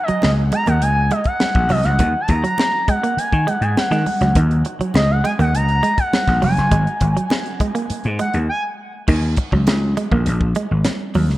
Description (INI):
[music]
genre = funk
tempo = 102 BPM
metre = 4/4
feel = straight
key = Eb minor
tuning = A4 = 440 Hz
[part]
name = expressive portamento lead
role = melody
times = 0.0-8.6 s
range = Eb5 to Bb5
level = -21 LUFS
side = equal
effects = chorus, tape echo
[part]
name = semi-hollow electric guitar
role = riff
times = 0.1-11.2 s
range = Eb3 to Bb3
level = -24 LUFS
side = right 3 dB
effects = spring reverb
[part]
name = vintage slap bass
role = bass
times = 0.1-11.4 s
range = F1 to Eb3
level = -17 LUFS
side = equal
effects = none
[part]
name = tight funk drum kit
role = drums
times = 0.1-11.4 s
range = crash cymbal, hi-hat, kick drum, snare drum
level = -21 LUFS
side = equal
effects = vintage 12-bit sampler grit
[part]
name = congas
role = percussion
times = 0.2-11.3 s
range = none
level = -30 LUFS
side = right 3 dB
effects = none
[sound]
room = moderate plate reverb, RT60 2.3 s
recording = rough home demo mix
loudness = -15 LUFS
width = side -16 dB against mid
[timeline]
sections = 0.0-9.1 A section; 9.1-11.4 B section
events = analog synth lead solo 0.0-9.1; break 8.5-9.1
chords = 0.0 Ebm11; 6.7 N.C.; 9.1 Ebm7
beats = 0.23 0.82 1.41 | 2.00 2.59 3.18 3.77 | 4.36 4.95 5.54 6.13 | 6.72 7.31 7.90 8.49 | 9.08 9.67 10.26 10.85